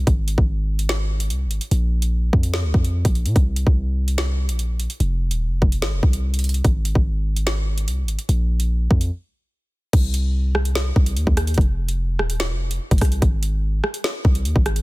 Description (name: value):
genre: hip hop, drill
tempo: 146 BPM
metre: 4/4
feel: half-time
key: unclear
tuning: A4 = 440 Hz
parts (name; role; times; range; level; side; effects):
- hard-hitting 808-style bass; bass; 0.0-14.8 s; Eb1 to Bb2; -20 LUFS; equal; none
- drill drum kit; drums; 0.1-14.8 s; crash cymbal, hi-hat, kick drum, rim click, snare drum; -20 LUFS; equal; none
room: little or no reverb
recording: dense, heavily limited modern master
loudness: -18 LUFS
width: side -21 dB against mid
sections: 0.0-9.9 A section; 9.9-14.8 B section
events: break 9.1-9.9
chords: none